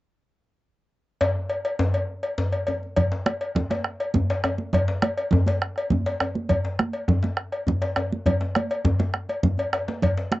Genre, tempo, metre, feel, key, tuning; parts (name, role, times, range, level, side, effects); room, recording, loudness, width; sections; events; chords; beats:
west african traditional, West African drum ensemble; 136 BPM (dotted quarters); 12/8; straight
cowbell; percussion; 1.2-10.2 s; -27 LUFS; left 2 dB
djembe; percussion; 1.2-10.4 s; -25 LUFS; left 1 dB
bombo; percussion; 3.0-10.4 s; -27 LUFS; right 1 dB
congas; percussion; 3.0-10.4 s; -26 LUFS; right 3 dB
wet booth ambience, RT60 0.2 s; home recording on cassette, nothing above 7.9 kHz; -22 LUFS; side -17 dB against mid
1.2-3.0 A section; 3.0-10.4 B section
drum fill 9.6-10.0
| 1.20 1.64 2.08 2.52 | 2.96 3.41 3.85 4.29 | 4.73 5.17 5.61 6.05 | 6.49 6.93 7.38 7.82 | 8.26 8.70 9.14 9.58 | 10.02